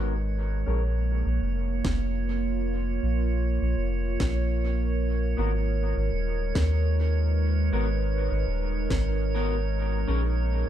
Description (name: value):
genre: ambient dub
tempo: 102 BPM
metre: 4/4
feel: swing 53% on 16ths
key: G# dorian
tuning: A4 = 440 Hz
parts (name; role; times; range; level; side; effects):
- warbly tape-like pad; sustained chords; 0.0-10.7 s; G#3 to C#5; -32 LUFS; right 3 dB; chorus, built-in reverb
- electric guitar at the edge of break-up; stabs; 0.0-0.8, 5.4-10.2 s; B3 to A#4; -36 LUFS; left 4 dB; wide subtle chorus, low-pass filter, dub echo
- soft dub sub bass; bass; 0.0-10.6 s; D#1 to D#2; -26 LUFS; equal; none
- drifting glass-harmonics texture; texture; 0.0-10.7 s; C#5; -37 LUFS; right 11 dB; chorus, built-in reverb
- electronic kick drum; drums; 1.8-9.0 s; none; -30 LUFS; equal; studio reverb
- electronic snare drum; drums; 1.8-9.0 s; none; -36 LUFS; equal; overdrive, studio reverb, dub echo
room: digital ambience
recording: dark, warm production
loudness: -24 LUFS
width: side -11 dB against mid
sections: 0.0-10.7 A section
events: filter sweep on clean electric guitar 0.0-10.7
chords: 0.0 G#m9; 0.7 A#m; 5.4 G#madd9; 10.1 A#m7